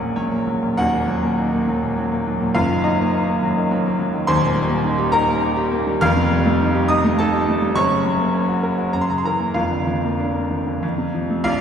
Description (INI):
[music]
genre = classical, virtuoso piano study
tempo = 93-108 BPM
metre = 3/4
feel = rubato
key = unclear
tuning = A4 = 435 Hz
[part]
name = clear baby grand piano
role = solo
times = 0.0-11.6 s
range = D#1 to F6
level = -17 LUFS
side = equal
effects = none
[sound]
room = wet concert hall reverb, RT60 2.4 s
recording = recorded in a church or concert hall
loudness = -17 LUFS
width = side -8 dB against mid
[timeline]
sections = 0.0-11.5 A section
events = none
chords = 0.0 F#/A#; 0.8 D#m; 2.6 D#m/F#; 4.3 Cm7/Eb; 6.0 F9; 7.8 Gb; 8.9 Gb7; 9.6 Bb/F; 10.8 F